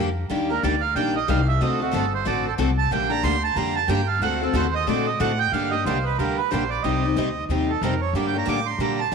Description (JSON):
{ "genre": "acoustic string swing (jazz manouche)", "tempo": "184 BPM", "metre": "4/4", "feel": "swing 60% on 8ths", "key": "G minor", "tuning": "A4 = 438 Hz", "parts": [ { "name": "picked steel-string acoustic guitar", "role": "accompaniment", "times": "0.0-9.0 s", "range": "C3 to A4", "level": "-26 LUFS", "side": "left 10 dB", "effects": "none" }, { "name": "picked steel-string acoustic guitar", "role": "accompaniment", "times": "0.0-9.1 s", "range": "C3 to A4", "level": "-29 LUFS", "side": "right 10 dB", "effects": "none" }, { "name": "upright bass", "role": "bass", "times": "0.0-9.1 s", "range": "G1 to Bb2", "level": "-26 LUFS", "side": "left 1 dB", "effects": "tube saturation" }, { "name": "accordion", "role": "second line", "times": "0.5-9.1 s", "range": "F#4 to D6", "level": "-25 LUFS", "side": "right 8 dB", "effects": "tape echo" } ], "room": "moderate echo chamber reverb, RT60 2.0 s", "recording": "1960s-style stereo with parts hard left and right", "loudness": "-20 LUFS", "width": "side -5 dB against mid", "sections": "0.0-5.5 A section; 5.5-9.1 A section", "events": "accordion solo 0.0-9.1", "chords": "0.3 Ebmaj7; 1.6 D7; 2.9 Gm; 4.2 D7b9; 5.5 Gm; 6.8 Cm; 8.1 Gm", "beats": "| 0.30 0.63 0.96 1.28 | 1.61 1.94 2.26 2.59 | 2.92 3.24 3.57 3.90 | 4.22 4.55 4.88 5.20 | 5.53 5.86 6.18 6.51 | 6.84 7.17 7.49 7.82 | 8.15 8.47 8.80 9.13" }